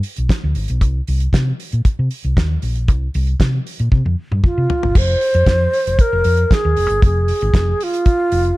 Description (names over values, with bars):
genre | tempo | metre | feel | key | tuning
disco | 116 BPM | 4/4 | straight | F minor | A4 = 440 Hz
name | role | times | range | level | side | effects
damped 70s drum kit | drums | 0.0-8.6 s | crash cymbal, hi-hat, kick drum, snare drum, toms | -17 LUFS | equal | none
hollow-body short-scale fingered electric bass | bass | 0.2-8.5 s | F1 to C3 | -17 LUFS | equal | none
mellow alto flute | melody | 4.5-8.6 s | F4 to C5 | -17 LUFS | right 1 dB | tape echo
room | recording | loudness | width
little or no reverb | dark, warm production | -14 LUFS | side -19 dB against mid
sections
0.0-5.0 A section; 5.0-8.6 B section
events
drum fill 3.9-5.0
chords
0.0 G (rootless); 0.8 N.C.; 5.0 Fm